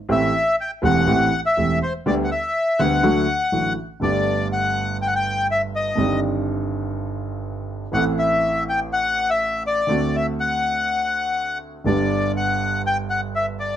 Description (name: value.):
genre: tango.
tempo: 122 BPM.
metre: 4/4.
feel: rubato.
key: G major.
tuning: A4 = 442 Hz.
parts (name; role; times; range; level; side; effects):
bandoneon; melody; 0.1-13.8 s; C5 to G5; -21 LUFS; left 2 dB; none.
warm grand piano; accompaniment; 0.1-13.7 s; E1 to A4; -22 LUFS; right 2 dB; none.
room: light reverb.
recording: none.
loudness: -19 LUFS.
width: side -10 dB against mid.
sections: 0.0-4.0 A section; 4.0-13.8 A section.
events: none.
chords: 0.1 Am7; 2.0 G/D; 3.0 D; 4.0 Gadd9; 6.0 Cmadd9/G; 7.9 Am; 9.9 D7; 11.9 G.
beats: | 0.09 0.58 1.07 1.56 | 2.04 2.54 3.03 3.52 | 4.01 4.51 5.00 5.49 | 5.98 6.47 6.96 7.45 | 7.93 8.42 8.91 9.40 | 9.89 10.38 10.87 11.37 | 11.86 12.35 12.84 13.34.